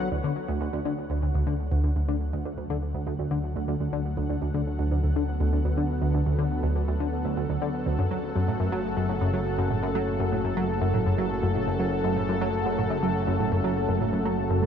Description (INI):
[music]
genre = ambient, sequencer-driven space music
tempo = 122 BPM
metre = 4/4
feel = straight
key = unclear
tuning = A4 = 440 Hz
[part]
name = lush unison pad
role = sustained chords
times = 0.0-14.7 s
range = C#3 to F#5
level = -30 LUFS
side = equal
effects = chorus
[part]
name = tight sequenced synth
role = riff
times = 0.0-14.7 s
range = D2 to F#3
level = -26 LUFS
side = equal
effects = chorus, analog delay
[part]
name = analog drone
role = bass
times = 0.0-14.7 s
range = F#1 to D2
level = -31 LUFS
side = equal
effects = chorus
[sound]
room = moderate huge ambient reverb, RT60 8.0 s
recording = cassette tape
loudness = -24 LUFS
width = side -8 dB against mid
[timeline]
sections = 0.1-14.7 A section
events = fade-in on analog synth pad 0.1-14.7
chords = 0.1 D; 8.0 F#m